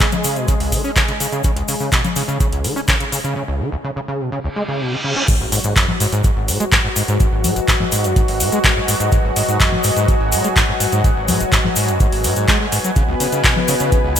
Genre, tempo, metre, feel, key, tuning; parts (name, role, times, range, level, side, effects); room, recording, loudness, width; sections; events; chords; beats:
acid house; 125 BPM; 4/4; straight; G# minor; A4 = 442 Hz
lush unison pad; sustained chords; 0.0-14.2 s; F#3 to B4; -25 LUFS; equal; chorus, sidechain pumping
overdriven acid bass; riff; 0.0-14.2 s; G#1 to C#4; -21 LUFS; equal; ensemble chorus, sidechain pumping, ping-pong delay
booming analog drum machine; drums; 0.0-14.2 s; congas, crash cymbal, handclaps, hi-hat; -19 LUFS; left 1 dB
electronic kick drum; drums; 0.0-14.0 s; -18 LUFS; equal
cabasa; percussion; 0.1-14.2 s; -26 LUFS; left 4 dB
reverse cymbal and impact; sound effects; 4.5-7.2 s; -25 LUFS; right 2 dB
deep dark ambient pad; texture; 6.2-14.2 s; E4 to G#5; -23 LUFS; left 1 dB; chorus, built-in reverb, sidechain pumping
moderate lush hall reverb, RT60 2.6 s; bright 1980s-style digital production; -14 LUFS; side -9 dB against mid
0.0-5.3 A section; 5.3-14.2 B section
break 3.4-5.3; reverse cymbal 4.5-5.3; drop 5.3-14.2; impact 5.3-7.2
0.0 C#5; 5.3 G#m7; 13.0 C#m7
0.00 0.48 0.96 | 1.44 1.92 2.40 2.88 | 3.36 3.84 4.32 4.80 | 5.28 5.76 6.24 6.72 | 7.20 7.68 8.16 8.64 | 9.12 9.60 10.08 10.56 | 11.04 11.52 12.00 12.48 | 12.96 13.44 13.92